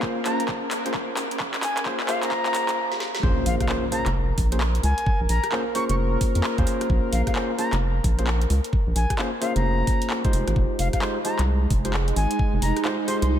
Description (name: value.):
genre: UK garage, two-step garage.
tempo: 131 BPM.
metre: 4/4.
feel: swing 63% on 16ths.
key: Bb dorian.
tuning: A4 = 440 Hz.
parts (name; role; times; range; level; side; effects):
warm analog pad; sustained chords; 0.0-13.4 s; Ab3 to Bb4; -34 LUFS; right 3 dB; chorus, sidechain pumping.
barky tine electric piano; stabs; 0.0-13.4 s; Ab3 to C5; -28 LUFS; left 1 dB; overdrive, low-pass filter, ping-pong delay.
electronic kick drum; drums; 0.0-12.5 s; none; -24 LUFS; equal; none.
garage drum kit; drums; 0.0-13.3 s; handclaps, hi-hat, rim click, snare drum; -30 LUFS; equal; none.
granular cloud pad; texture; 0.0-2.8, 11.6-13.4 s; Db4 to F5; -33 LUFS; right 3 dB; built-in reverb, sidechain pumping.
reedy silver concert flute; melody; 0.3-13.3 s; F5 to Db6; -30 LUFS; left 1 dB; low-pass filter, ping-pong delay.
rubbery square bass; bass; 3.2-13.4 s; F1 to F2; -22 LUFS; equal; sidechain pumping.
impact; sound effects; 3.3-5.1 s; none; -33 LUFS; equal; none.
room: moderate church reverb, RT60 2.8 s.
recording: dreamy mix soaked in reverb, high-pass filter.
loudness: -21 LUFS.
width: side -10 dB against mid.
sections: 0.0-3.2 A section; 3.2-13.4 B section.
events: build-up 0.0-3.2; drum fill 0.0-2.8, 2.9-3.2; filter sweep on flute 0.0-3.2; break 2.8-3.2; drop 3.2-13.4; impact 3.2-5.1.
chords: 0.0 Bbm7; 3.0 N.C.; 3.2 Bbm7; 10.3 Fm7.